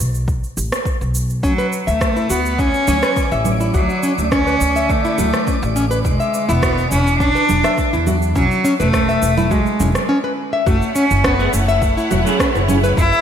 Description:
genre	organic downtempo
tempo	104 BPM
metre	4/4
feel	straight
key	F# minor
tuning	A4 = 443 Hz
part	upright bass	bass	0.0-13.1 s	E1 to E2	-20 LUFS	equal	sidechain pumping
part	electronic shaker, rim click and congas	drums	0.1-13.2 s	none	-23 LUFS	right 2 dB	overdrive, gated reverb
part	electronic kick drum	drums	0.3-13.1 s	none	-20 LUFS	equal	overdrive
part	bright cello	melody	1.4-13.2 s	F#3 to E4	-19 LUFS	equal	digital delay, shimmer reverb
part	nylon-string guitar	arpeggios	1.4-13.2 s	C#4 to E5	-20 LUFS	left 2 dB	digital delay, shimmer reverb
part	wind-like tuned noise texture	texture	2.4-10.1 s	D3 to D6	-29 LUFS	right 1 dB	built-in reverb, analog chorus, shimmer reverb
part	clear symphonic string section	sustained chords	10.7-13.2 s	E4 to F#5	-25 LUFS	left 1 dB	sidechain pumping, shimmer reverb
part	semi-hollow electric guitar	accompaniment	11.4-13.2 s	F#3 to G#4	-23 LUFS	right 2 dB	ensemble chorus, sidechain pumping, digital delay, shimmer reverb
room	moderate lush hall reverb, RT60 1.9 s, small room ambience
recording	bright 1980s-style digital production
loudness	-14 LUFS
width	side -8 dB against mid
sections	0.0-10.7 A section; 10.7-13.2 B section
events	break 10.1-10.7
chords	0.0 B5; 1.4 Dmaj7(no3); 6.1 E7; 10.7 F#m7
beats	0.28 0.86 | 1.44 2.01 2.59 3.17 | 3.74 4.32 4.90 5.47 | 6.05 6.63 7.21 7.78 | 8.36 8.94 9.51 10.09 | 10.67 11.24 11.82 12.40 | 12.97

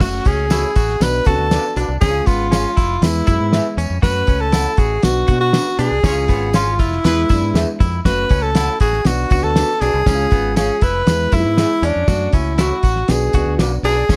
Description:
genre	uptempo 1960s-style soul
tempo	119 BPM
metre	4/4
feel	straight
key	F# minor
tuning	A4 = 440 Hz
part	breathy tenor saxophone	melody	0.0-14.2 s	D4 to B4	-21 LUFS	equal	none
part	dark upright piano	accompaniment	0.0-14.2 s	G#3 to G#4	-28 LUFS	equal	none
part	direct-recorded clean electric guitar	riff	0.0-14.2 s	B3 to F#4	-30 LUFS	equal	spring reverb
part	fingered electric bass	bass	0.0-14.2 s	E#1 to B2	-23 LUFS	equal	none
part	cloth-damped thuddy drum kit	drums	0.0-14.2 s	crash cymbal, hi-hat, kick drum, snare drum	-18 LUFS	equal	none
part	tambourine	percussion	0.0-14.2 s	none	-35 LUFS	equal	none
part	electric guitar through a small old amp	stabs	0.5-13.9 s	D4 to F#5	-28 LUFS	equal	none
part	clear horn section	second line	6.0-7.2, 14.1-14.2 s	E4 to C#5	-29 LUFS	equal	none
room	small room reverb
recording	none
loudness	-16 LUFS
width	mono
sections	0.0-14.2 A section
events	band accent 6.0-8.1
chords	0.0 F#m; 1.0 Bm; 2.0 C#; 3.0 E; 4.0 F#m; 5.0 Bm; 6.0 C#; 7.0 E; 8.1 F#m; 9.1 Bm; 10.1 C#; 11.1 E; 12.1 F#m; 13.1 Bm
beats	| 0.01 0.51 1.01 1.52 | 2.02 2.52 3.02 3.53 | 4.03 4.53 5.04 5.54 | 6.04 6.54 7.05 7.55 | 8.05 8.56 9.06 9.56 | 10.07 10.57 11.07 11.58 | 12.08 12.58 13.09 13.59 | 14.09

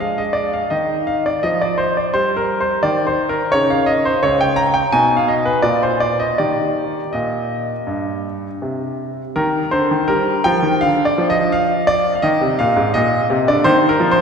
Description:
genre	classical-period piano sonatina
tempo	85 BPM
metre	4/4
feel	rubato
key	Eb major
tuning	A4 = 441 Hz
part	clear concert grand piano	solo	0.0-14.2 s	Db2 to Bb5	-15 LUFS	equal	none
room	wet church reverb, RT60 3.0 s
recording	minimal, uncompressed stereo recording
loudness	-15 LUFS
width	side -6 dB against mid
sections	0.0-9.4 A section; 9.4-14.2 A section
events	none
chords	0.0 Ddim; 0.7 Eb; 3.5 Dbmaj9#11; 4.9 B6; 5.6 Bb5; 6.4 Eb; 10.8 Dm; 12.2 Eb5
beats	0.02 | 0.72 1.43 2.14 2.83 | 3.53 4.23 4.93 5.64 | 6.38 7.13 7.87 8.61 | 9.36 10.08 10.81 11.52 | 12.22 12.93 13.64

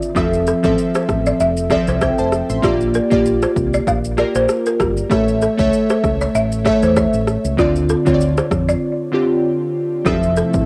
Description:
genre	afrobeats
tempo	97 BPM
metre	4/4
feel	swing 55% on 16ths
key	D minor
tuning	A4 = 439 Hz
part	glassy digital keys	accompaniment	0.0-10.7 s	D3 to C6	-19 LUFS	equal	chorus
part	deep house drum kit	drums	0.0-10.7 s	kick drum, rim click, shaker	-25 LUFS	equal	overdrive
part	balafon	riff	0.2-10.5 s	F4 to F5	-24 LUFS	equal	analog delay
part	fingered electric bass	bass	0.2-10.6 s	F1 to F2	-24 LUFS	equal	none
part	glassy FM pad	sustained chords	10.3-10.7 s	C3 to E4	-28 LUFS	equal	ensemble chorus, built-in reverb
part	congas	percussion	10.1-10.2 s	none	barely audible	none	none
room	light reverb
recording	home recording on cassette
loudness	-17 LUFS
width	mono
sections	0.0-10.1 A section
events	break 8.8-10.1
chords	0.2 Fmaj7; 2.6 Bb6; 5.1 A; 7.6 Dm7; 10.1 Fmaj7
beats	| 0.16 0.78 1.40 2.02 | 2.64 3.25 3.87 4.49 | 5.11 5.73 6.35 6.97 | 7.58 8.20 8.82 9.44 | 10.06

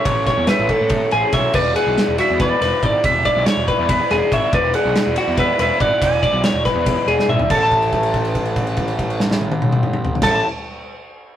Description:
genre	math rock and midwest emo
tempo	282 BPM (eighths)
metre	7/8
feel	straight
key	A major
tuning	A4 = 444 Hz
part	twangy electric guitar	melody	0.0-10.4 s	B4 to A5	-23 LUFS	right 3 dB	none
part	twelve-string electric guitar	arpeggios	0.0-10.5 s	F#4 to A5	-19 LUFS	left 3 dB	none
part	raw garage guitar	riff	0.0-10.4 s	A2 to D5	-24 LUFS	right 3 dB	overdrive
part	fuzz picked electric bass	bass	0.1-10.4 s	E1 to A2	-24 LUFS	equal	overdrive
part	loose indie drum kit	drums	0.1-10.3 s	crash cymbal, kick drum, ride cymbal, snare drum, toms	-21 LUFS	equal	none
room	moderate stone room reverb, RT60 1.3 s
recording	rough rehearsal-room recording, tube saturation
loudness	-15 LUFS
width	side -10 dB against mid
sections	0.0-7.5 A section; 7.5-10.5 B section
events	drum fill 7.2-7.5; held note 7.5-10.2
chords	0.0 A; 1.6 E9; 7.5 A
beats	| 0.06 0.28 0.49 0.70 0.91 1.13 1.34 | 1.55 1.76 1.98 2.19 2.40 2.62 2.83 | 3.04 3.25 3.47 3.68 3.89 4.10 4.32 | 4.53 4.74 4.96 5.17 5.38 5.59 5.80 | 6.02 6.23 6.44 6.66 6.87 7.08 7.29 | 7.50 7.72 7.93 8.14 8.36 8.57 8.78 | 8.99 9.20 9.42 9.63 9.84 10.05 10.26

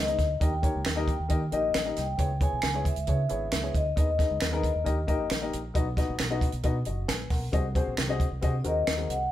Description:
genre	uptempo 1960s-style soul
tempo	135 BPM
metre	4/4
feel	straight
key	G# harmonic minor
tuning	A4 = 440 Hz
part	vibraphone with soft mallets	melody	0.0-5.5, 8.6-9.2 s	D5 to G#5	-30 LUFS	left 2 dB	none
part	deep dub fingered electric bass	bass	0.0-9.3 s	F#1 to D#3	-32 LUFS	right 1 dB	none
part	warm upright piano	accompaniment	0.1-9.2 s	A#3 to G#5	-33 LUFS	left 4 dB	none
part	compact cocktail drum kit	drums	0.1-9.2 s	hi-hat, kick drum, snare drum	-28 LUFS	right 1 dB	none
part	finger snap	percussion	0.8-9.0 s	none	-35 LUFS	right 3 dB	none
room	moderate studio reverb, RT60 0.8 s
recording	band playing live in one room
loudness	-25 LUFS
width	side -13 dB against mid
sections	0.0-9.3 A section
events	none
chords	0.4 D#; 2.2 C#m7; 4.0 G#m; 4.9 D#; 5.8 B; 7.5 G#7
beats	| 0.41 0.85 1.30 1.74 | 2.19 2.63 3.08 3.52 | 3.97 4.41 4.86 5.30 | 5.75 6.20 6.64 7.09 | 7.54 7.98 8.43 8.87

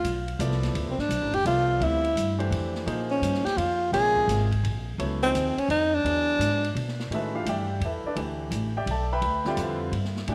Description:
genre	modal jazz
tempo	170 BPM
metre	3/4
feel	swing 66% on 8ths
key	A minor from 7.1 s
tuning	A4 = 440 Hz
part	warm tenor saxophone	melody	0.0-7.0 s	C4 to Ab4	-27 LUFS	equal	none
part	upright bass	bass	0.0-10.3 s	F1 to B2	-31 LUFS	equal	none
part	open jazz drum kit	drums	0.0-10.3 s	hi-hat, kick drum, ride cymbal, snare drum	-41 LUFS	equal	none
part	warm grand piano	accompaniment	0.4-10.3 s	C3 to B5	-33 LUFS	equal	none
room	moderate echo chamber reverb, RT60 2.0 s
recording	none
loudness	-26 LUFS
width	mono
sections	0.0-7.1 A section; 7.1-10.3 B section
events	none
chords	0.0 Dm9; 2.9 Bbm9; 6.0 E9; 7.1 A9sus4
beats	0.04 0.39 | 0.74 1.10 1.45 | 1.81 2.16 2.51 | 2.87 3.22 3.57 | 3.93 4.28 4.63 | 4.99 5.34 5.69 | 6.05 6.40 6.75 | 7.11 7.46 7.81 | 8.16 8.52 8.87 | 9.22 9.58 9.93 | 10.28

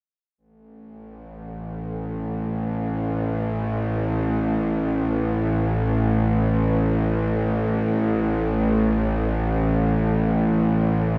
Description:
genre	world meditative, free-time meditation music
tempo	free time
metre	none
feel	none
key	unclear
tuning	A4 = 440 Hz
part	bowed-like drone	solo	1.4-11.2 s	A1	-23 LUFS	equal	built-in reverb, analog delay
room	wet spring reverb, RT60 2.1 s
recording	echo-heavy mix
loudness	-23 LUFS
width	mono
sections	0.4-11.2 A section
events	none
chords	none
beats	free time

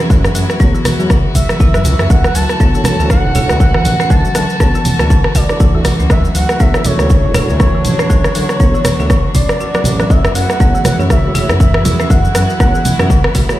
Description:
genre	afro house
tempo	120 BPM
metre	4/4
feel	swing 57% on 16ths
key	unclear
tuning	A4 = 440 Hz
part	rich chamber string section	sustained chords	0.0-13.6 s	E3 to G#4	-24 LUFS	left 2 dB	sidechain pumping
part	folk marimba with hard mallets	arpeggios	0.0-13.5 s	C#3 to F#4	-19 LUFS	equal	sidechain pumping
part	house drum kit	drums	0.0-13.6 s	cabasa, hi-hat, rim click	-19 LUFS	equal	none
part	smooth gliding synth bass	bass	0.1-13.2 s	D1 to F#2	-16 LUFS	equal	sidechain pumping
part	electronic kick drum	drums	0.1-13.5 s	none	-11 LUFS	equal	none
part	mellow tonewheel organ	stabs	0.6-13.6 s	A3 to E5	-25 LUFS	right 2 dB	chorus vibrato, stopped rotary speaker, sidechain pumping, dub echo
part	congas	percussion	0.6-13.5 s	none	-20 LUFS	right 2 dB	none
part	expressive portamento lead	melody	1.3-13.6 s	C#5 to A5	-20 LUFS	right 1 dB	analog chorus, dub echo
room	light reverb, digital ambience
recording	played on a big sound system in a bare room, stone room reverb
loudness	-10 LUFS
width	side -14 dB against mid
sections	0.0-13.6 A section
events	kick drops out 9.6-10.1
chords	0.0 F#m9; 2.1 Dmaj9; 10.1 F#m9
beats	| 0.10 0.60 1.10 1.60 | 2.10 2.60 3.10 3.60 | 4.10 4.60 5.10 5.60 | 6.10 6.60 7.10 7.60 | 8.10 8.60 9.10 9.60 | 10.10 10.60 11.10 11.60 | 12.10 12.60 13.10

